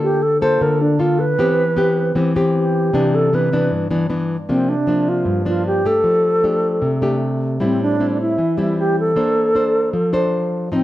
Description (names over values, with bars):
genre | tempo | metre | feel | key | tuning
bossa nova | 154 BPM | 4/4 | straight | C major | A4 = 442 Hz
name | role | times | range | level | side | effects
mellow reedy alto flute | melody | 0.0-10.8 s | C4 to C5 | -18 LUFS | right 1 dB | none
nylon-string guitar | accompaniment | 0.0-10.8 s | G2 to C5 | -18 LUFS | left 1 dB | none
room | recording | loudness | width
moderate large studio reverb, RT60 1.2 s | none | -15 LUFS | side -14 dB against mid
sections
0.0-4.5 A section; 4.5-10.8 B section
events
alto flute solo 0.0-4.5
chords
0.0 Bbmaj7/D; 1.4 Cmaj7/E; 2.9 Cmaj9; 4.5 C9sus4; 6.0 F69; 7.6 Am7; 9.2 Bbmaj9